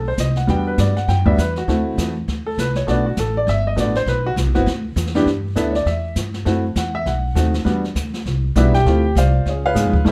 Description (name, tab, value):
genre	jazz piano trio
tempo	201 BPM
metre	4/4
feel	swing 60% on 8ths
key	G major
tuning	A4 = 440 Hz
part	warm concert grand piano	melody	0.0-10.1 s	G2 to G5	-22 LUFS	equal	none
part	upright bass	bass	0.0-10.1 s	G1 to G#2	-22 LUFS	equal	none
part	jazz brush drum kit	drums	0.2-10.1 s	brushed snare drum, hi-hat, kick drum, snare drum	-28 LUFS	equal	none
room	light reverb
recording	dark, warm production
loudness	-19 LUFS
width	mono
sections	0.0-5.3 A section; 5.3-10.1 A section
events	grand piano solo 0.0-10.1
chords	0.5 Em9; 1.7 D9; 2.9 Gmaj7; 4.7 Dsus2; 5.3 G5; 6.5 F#m7b5; 7.1 B7b9; 7.7 Em9; 8.9 Dm7; 9.5 C#9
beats	0.18 | 0.48 0.78 1.08 1.38 | 1.68 1.98 2.28 2.58 | 2.88 3.17 3.47 3.77 | 4.07 4.37 4.67 4.97 | 5.27 5.57 5.87 6.17 | 6.47 6.77 7.07 7.36 | 7.66 7.96 8.26 8.56 | 8.86 9.16 9.46 9.76 | 10.06